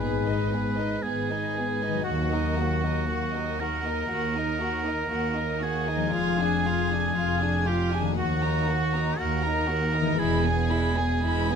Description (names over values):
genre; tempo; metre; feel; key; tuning
classical, slow romantic movement for symphony orchestra; 59 BPM; 4/4; rubato; unclear; A4 = 440 Hz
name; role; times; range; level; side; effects
warm chamber violin section; melody; 0.0-11.6 s; B4 to B5; -35 LUFS; left 4 dB; none
clear oboe; second line; 0.0-11.6 s; F#4 to B4; -30 LUFS; right 2 dB; none
warm chamber violin section; second line; 0.0-11.6 s; E4 to B4; -33 LUFS; left 1 dB; none
warm chamber viola section; accompaniment; 0.0-11.6 s; G#3 to F4; -33 LUFS; right 1 dB; none
concert harp; arpeggios; 0.0-11.6 s; G#2 to D#5; -32 LUFS; left 11 dB; none
dark chamber cello section; bass; 0.0-11.6 s; D#2 to G#2; -31 LUFS; right 2 dB; none
warm chamber double bass section; bass; 0.0-11.6 s; E1 to D#2; -30 LUFS; right 2 dB; none
room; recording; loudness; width
moderate recital hall reverb, RT60 1.6 s; close, detailed microphones; -24 LUFS; side -7 dB against mid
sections
0.0-11.6 A section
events
none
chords
0.0 G#m; 2.1 D#m; 6.1 Ddim/F; 8.2 D#m; 10.2 E